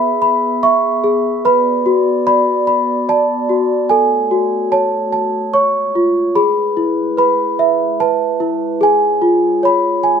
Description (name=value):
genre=children's music, lullaby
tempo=73 BPM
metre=3/4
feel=straight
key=unclear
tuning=A4 = 440 Hz
part: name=celesta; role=melody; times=0.0-10.2 s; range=E4 to C#6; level=-13 LUFS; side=equal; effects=none
part: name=glass harmonica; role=sustained chords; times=0.0-10.2 s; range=G#3 to E5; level=-24 LUFS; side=equal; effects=none
room=moderate stone room reverb, RT60 0.9 s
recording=band playing live in one room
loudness=-12 LUFS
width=side -7 dB against mid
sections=0.0-10.2 A section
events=none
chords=0.0 E; 1.4 Bm; 3.9 F#m; 5.5 C#; 6.4 E; 8.8 C#